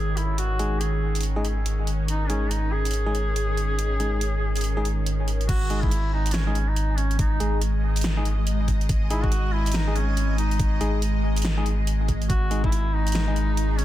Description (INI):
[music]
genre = deep dubstep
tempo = 141 BPM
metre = 4/4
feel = swing 62% on 16ths, half-time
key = unclear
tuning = A4 = 440 Hz
[part]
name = clear duduk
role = melody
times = 0.0-13.8 s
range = C#4 to G#4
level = -31 LUFS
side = equal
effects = dub echo
[part]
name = bowed-like drone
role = sustained chords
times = 0.0-13.8 s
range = D#3 to D#5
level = -32 LUFS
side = right 1 dB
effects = built-in reverb, phaser
[part]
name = soft dub sub bass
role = bass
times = 0.0-13.8 s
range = G#1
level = -24 LUFS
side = equal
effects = none
[part]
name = dubstep drum kit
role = drums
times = 0.2-13.8 s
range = crash cymbal, hi-hat, snare drum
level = -32 LUFS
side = right 1 dB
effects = overdrive
[part]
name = bell-like tine electric piano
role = stabs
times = 0.6-13.4 s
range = G#3 to G#4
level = -32 LUFS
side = left 3 dB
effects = medium stereo tremolo, dub echo
[part]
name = electronic kick drum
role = drums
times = 5.5-12.7 s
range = none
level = -25 LUFS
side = equal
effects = overdrive
[sound]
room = little or no reverb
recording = dense, heavily limited modern master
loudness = -21 LUFS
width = side -13 dB against mid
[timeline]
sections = 0.0-5.5 A section; 5.5-13.8 B section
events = drop 5.5-13.8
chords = 0.0 G#5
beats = | 0.38 0.81 1.23 1.66 | 2.08 2.51 2.94 3.36 | 3.79 4.21 4.64 5.06 | 5.49 5.91 6.34 6.76 | 7.19 7.62 8.04 8.47 | 8.89 9.32 9.74 10.17 | 10.60 11.02 11.45 11.87 | 12.30 12.72 13.15 13.57